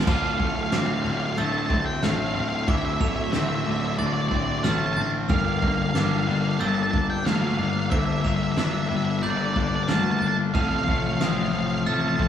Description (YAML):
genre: post-rock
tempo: 92 BPM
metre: 4/4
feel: straight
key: D minor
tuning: A4 = 437 Hz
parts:
  - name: pedal steel guitar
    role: sustained chords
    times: 0.0-12.3 s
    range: E4 to A5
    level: -38 LUFS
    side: right 3 dB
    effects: none
  - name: glockenspiel with brass mallets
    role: arpeggios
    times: 0.0-12.3 s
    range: D6 to F7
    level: -34 LUFS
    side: right 7 dB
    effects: none
  - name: twangy electric guitar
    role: arpeggios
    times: 0.0-12.3 s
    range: D2 to D4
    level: -32 LUFS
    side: equal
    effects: none
  - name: sludgy distorted guitar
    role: riff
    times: 0.0-12.3 s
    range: D2 to G3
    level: -27 LUFS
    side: left 6 dB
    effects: overdrive
  - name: fuzz picked electric bass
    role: bass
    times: 0.0-12.3 s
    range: D1 to D2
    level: -29 LUFS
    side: equal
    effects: overdrive
  - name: octave-fuzz lead guitar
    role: melody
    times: 0.1-12.3 s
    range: D5 to A5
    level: -28 LUFS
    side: right 1 dB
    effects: distortion
  - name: loose indie drum kit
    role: drums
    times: 0.1-12.3 s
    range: crash cymbal, kick drum, snare drum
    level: -28 LUFS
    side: right 1 dB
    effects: none
room: wet large studio reverb, RT60 0.9 s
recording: band playing live in one room, small room reverb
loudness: -21 LUFS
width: side -9 dB against mid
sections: 0.1-12.3 A section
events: none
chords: 0.1 Dm7; 5.3 Gm7; 10.5 F7/A